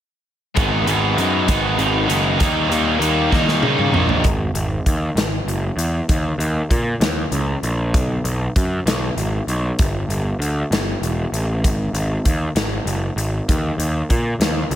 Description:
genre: quiet-loud alternative rock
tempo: 65 BPM (dotted quarters)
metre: 6/8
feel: straight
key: G# minor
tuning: A4 = 440 Hz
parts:
  - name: cranked stack guitar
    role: riff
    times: 0.5-4.2 s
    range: G#2 to D#4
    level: -18 LUFS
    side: equal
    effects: overdrive
  - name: fuzz picked electric bass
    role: bass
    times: 0.6-14.8 s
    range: E1 to C#3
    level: -20 LUFS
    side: equal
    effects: overdrive
  - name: big rock drum kit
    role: drums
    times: 0.6-14.8 s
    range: hi-hat, kick drum, snare drum, toms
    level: -21 LUFS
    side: equal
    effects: none
room: studio reverb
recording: none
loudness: -17 LUFS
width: side -11 dB against mid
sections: 0.6-4.2 A section; 4.2-14.8 B section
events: drum fill 3.3-4.2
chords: 0.6 G#m; 2.4 D#; 4.2 G#5; 6.1 D#5; 7.9 B5; 9.8 G5; 11.6 G#5; 13.5 D#5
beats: | 0.56 1.48 | 2.40 3.32 | 4.24 5.17 | 6.09 7.01 | 7.93 8.86 | 9.78 10.71 | 11.63 12.56 | 13.48 14.41

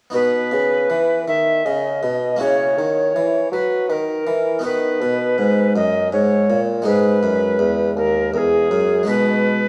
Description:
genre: classical, baroque-style sonata movement with continuo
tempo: 81 BPM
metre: 3/4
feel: straight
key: B major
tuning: A4 = 440 Hz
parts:
  - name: alto recorder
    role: melody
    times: 0.1-9.7 s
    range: G#4 to E5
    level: -21 LUFS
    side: equal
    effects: none
  - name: harpsichord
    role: accompaniment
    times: 0.1-9.7 s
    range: D#2 to G#4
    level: -25 LUFS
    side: equal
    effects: none
  - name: mellow bassoon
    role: bass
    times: 0.1-9.6 s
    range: D#2 to F#3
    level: -24 LUFS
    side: equal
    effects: none
room: wet recital hall reverb, RT60 1.6 s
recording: worn, warbling old tape, cassette tape, warbly pitch drift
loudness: -18 LUFS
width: mono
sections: 0.1-9.7 A section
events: none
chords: 0.1 B; 2.4 F#7/C#; 4.6 B; 6.9 G#m; 9.1 G#m7/B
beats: | 0.15 0.90 1.65 | 2.40 3.15 3.89 | 4.64 5.38 6.12 | 6.86 7.59 8.33 | 9.07

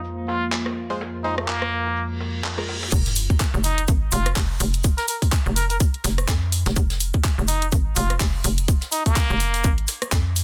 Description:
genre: bass house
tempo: 125 BPM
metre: 4/4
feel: swing 57% on 16ths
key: F minor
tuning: A4 = 440 Hz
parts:
  - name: sweeping resonant pad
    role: sustained chords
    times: 0.0-2.9 s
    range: F2 to Bb3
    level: -32 LUFS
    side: equal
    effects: chorus, phaser, sidechain pumping
  - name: soft brush drum kit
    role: drums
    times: 0.0-10.4 s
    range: hi-hat, shaker, snare drum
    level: -38 LUFS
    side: equal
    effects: none
  - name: warbly tape-like pad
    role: texture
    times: 0.0-2.9 s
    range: F4 to F5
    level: -41 LUFS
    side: equal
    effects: chorus, built-in reverb, sidechain pumping
  - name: trumpet with plunger mute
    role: melody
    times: 0.3-9.7 s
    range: Bb3 to Bb4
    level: -30 LUFS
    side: equal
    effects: dub echo
  - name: garage drum kit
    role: drums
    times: 0.5-10.4 s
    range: crash cymbal, handclaps, hi-hat, rim click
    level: -29 LUFS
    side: equal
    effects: overdrive, low-pass filter on snare, low-pass filter on hats, low-pass filter on cymbals
  - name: band-passed chord stab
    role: stabs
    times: 0.9-2.8 s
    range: Ab3 to C5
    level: -35 LUFS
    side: equal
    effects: phaser, sidechain pumping, dub echo
  - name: reverse cymbal and sub drop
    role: sound effects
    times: 2.1-4.8 s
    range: none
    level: -36 LUFS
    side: equal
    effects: none
  - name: hollow knocking FM bass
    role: bass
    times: 2.9-10.4 s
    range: F1 to F2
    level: -25 LUFS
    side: equal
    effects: tube saturation, sidechain pumping
  - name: electronic kick drum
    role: drums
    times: 2.9-10.2 s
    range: none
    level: -22 LUFS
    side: equal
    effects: overdrive
  - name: cabasa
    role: percussion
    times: 2.9-10.4 s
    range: none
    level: -36 LUFS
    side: equal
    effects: none
room: studio ambience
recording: dense, heavily limited modern master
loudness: -22 LUFS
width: mono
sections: 0.0-2.9 A section; 2.9-10.4 B section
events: filter sweep on synth stab 0.0-2.9; reverse cymbal 2.1-2.9; drop 2.9-10.4; impact 2.9-4.8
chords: 0.0 Fm; 2.9 N.C.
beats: 0.04 0.52 | 1.00 1.48 1.96 2.44 | 2.92 3.40 3.88 4.36 | 4.84 5.32 5.80 6.28 | 6.76 7.24 7.72 8.20 | 8.68 9.16 9.64 10.12

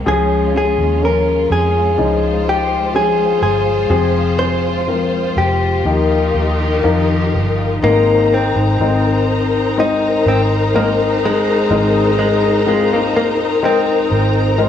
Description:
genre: pop ballad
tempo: 62 BPM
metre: 4/4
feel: straight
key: Ab major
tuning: A4 = 439 Hz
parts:
  - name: warm concert grand piano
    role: accompaniment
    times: 0.0-14.7 s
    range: Ab2 to F5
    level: -19 LUFS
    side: left 6 dB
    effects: cassette tape
  - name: rich studio string section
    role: sustained chords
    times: 0.0-14.7 s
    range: Eb3 to Bb5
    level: -19 LUFS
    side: left 1 dB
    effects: cassette tape
  - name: vintage muted fingered electric bass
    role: bass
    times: 0.0-14.7 s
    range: F1 to F2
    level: -19 LUFS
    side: equal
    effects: none
  - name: direct-recorded clean electric guitar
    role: melody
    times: 0.1-14.6 s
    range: Ab3 to C5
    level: -17 LUFS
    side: left 1 dB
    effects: spring reverb, cassette tape
room: moderate studio reverb, RT60 0.6 s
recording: home recording on cassette, small room ambience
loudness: -13 LUFS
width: side -9 dB against mid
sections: 0.0-7.8 A section; 7.8-14.7 B section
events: grand piano fill 6.3-7.8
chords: 0.1 Db; 3.9 Fm; 5.9 Ebadd9; 7.8 Abadd9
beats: | 0.07 1.03 1.99 2.95 | 3.91 4.88 5.86 6.84 | 7.83 8.80 9.77 10.74 | 11.70 12.66 13.62 14.58

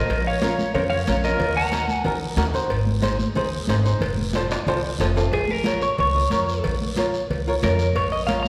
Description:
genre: latin, cumbia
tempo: 183 BPM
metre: 4/4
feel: straight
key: Bb minor from 5.3 s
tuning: A4 = 441 Hz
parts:
  - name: electric guitar at the edge of break-up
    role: melody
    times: 0.0-2.0, 5.3-8.5 s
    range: Ab4 to Bb5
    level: -27 LUFS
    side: equal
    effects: spring reverb
  - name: accordion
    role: second line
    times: 0.0-2.0 s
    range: Bb4 to Gb5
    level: -31 LUFS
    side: equal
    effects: light tremolo tuning
  - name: flamenco guitar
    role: accompaniment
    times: 0.0-8.5 s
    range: Db4 to Eb5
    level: -28 LUFS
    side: equal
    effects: none
  - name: upright bass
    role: bass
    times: 0.0-8.5 s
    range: F1 to F2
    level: -28 LUFS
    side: equal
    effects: none
  - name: congas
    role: percussion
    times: 0.1-8.5 s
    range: none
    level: -31 LUFS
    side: equal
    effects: none
  - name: cowbell and timbales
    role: percussion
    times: 0.1-8.4 s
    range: none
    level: -34 LUFS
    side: equal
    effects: none
  - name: guiro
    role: percussion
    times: 0.1-8.5 s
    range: none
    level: -40 LUFS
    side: equal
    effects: none
room: wet recital hall reverb, RT60 1.6 s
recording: heard from further back in the room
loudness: -22 LUFS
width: mono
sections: 0.0-5.3 A section; 5.3-8.5 B section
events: drum fill 4.3-5.3; nylon-string guitar fill 4.8-5.3; clean electric guitar solo 5.3-8.5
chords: 0.1 Bbm; 1.4 Ebm; 2.7 Ab; 4.0 F7; 5.3 Bbm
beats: | 0.09 0.42 0.74 1.07 | 1.40 1.73 2.05 2.38 | 2.71 3.04 3.36 3.69 | 4.02 4.35 4.67 5.00 | 5.33 5.66 5.99 6.31 | 6.64 6.97 7.30 7.63 | 7.96 8.28

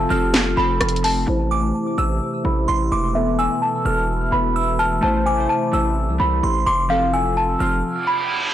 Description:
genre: hip hop, trap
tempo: 128 BPM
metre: 4/4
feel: half-time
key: A minor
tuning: A4 = 440 Hz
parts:
  - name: small celesta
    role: melody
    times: 0.0-8.5 s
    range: E5 to C6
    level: -22 LUFS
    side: equal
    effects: low-pass filter, tape echo
  - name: glassy synth bell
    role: second line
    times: 0.0-7.8 s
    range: C6 to F6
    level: -26 LUFS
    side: right 3 dB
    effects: chorus, tape echo
  - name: glassy digital keys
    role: accompaniment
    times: 0.0-8.0 s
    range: E3 to C5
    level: -25 LUFS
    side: left 1 dB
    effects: chorus, low-pass filter
  - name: sweeping resonant pad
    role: sustained chords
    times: 0.0-7.8 s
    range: B2 to F4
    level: -28 LUFS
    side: equal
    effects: chorus, phaser, low-pass filter
  - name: distorted 808-style bass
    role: bass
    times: 0.0-7.8 s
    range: E1 to C2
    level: -23 LUFS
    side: equal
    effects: distortion
  - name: trap drum kit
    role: drums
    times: 0.3-1.2 s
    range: handclaps, hi-hat, rim click, snare drum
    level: -20 LUFS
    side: equal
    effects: overdrive, vintage 12-bit sampler grit
  - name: reverse cymbal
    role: sound effects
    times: 8.0-8.5 s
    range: none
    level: -23 LUFS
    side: right 1 dB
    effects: none
room: light reverb, digital ambience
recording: blown-out, overdriven recording, overdrive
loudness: -17 LUFS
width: side -11 dB against mid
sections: 0.0-1.3 A section; 1.3-8.5 B section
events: filter sweep 1.3-8.5; stop 7.8-8.5; reverse cymbal 8.0-8.5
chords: 0.0 F; 1.3 Am; 3.1 Esus4; 5.0 Am; 6.9 F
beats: 0.34 0.81 | 1.27 1.74 2.21 2.68 | 3.15 3.62 4.09 4.56 | 5.03 5.49 5.96 6.43 | 6.90 7.37 7.84 8.31

